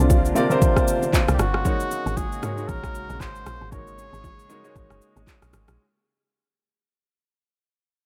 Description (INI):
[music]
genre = amapiano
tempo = 116 BPM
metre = 4/4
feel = swing 58% on 16ths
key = unclear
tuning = A4 = 439 Hz
[part]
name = warm grand piano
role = accompaniment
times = 0.0-5.8 s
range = C3 to D5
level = -27 LUFS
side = equal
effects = none
[part]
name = warm analog pad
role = sustained chords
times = 0.0-5.8 s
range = Db3 to Ab4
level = -33 LUFS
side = equal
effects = chorus
[part]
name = woody log drum bass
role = bass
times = 0.0-5.8 s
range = Gb1 to Ab2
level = -27 LUFS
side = equal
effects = none
[part]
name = afro-pop drum kit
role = drums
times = 0.0-5.8 s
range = handclaps, kick drum, rim click, shaker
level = -25 LUFS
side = equal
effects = none
[part]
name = bongos and congas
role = percussion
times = 0.1-5.8 s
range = none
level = -33 LUFS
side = equal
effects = none
[part]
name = trumpet with cup mute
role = melody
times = 1.3-5.2 s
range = F#4 to Db5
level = -36 LUFS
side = equal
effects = none
[sound]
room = light reverb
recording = none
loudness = -22 LUFS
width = mono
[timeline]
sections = 0.0-5.8 A section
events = fade-out 0.0-5.8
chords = 0.0 C9sus4; 1.7 Ab9sus4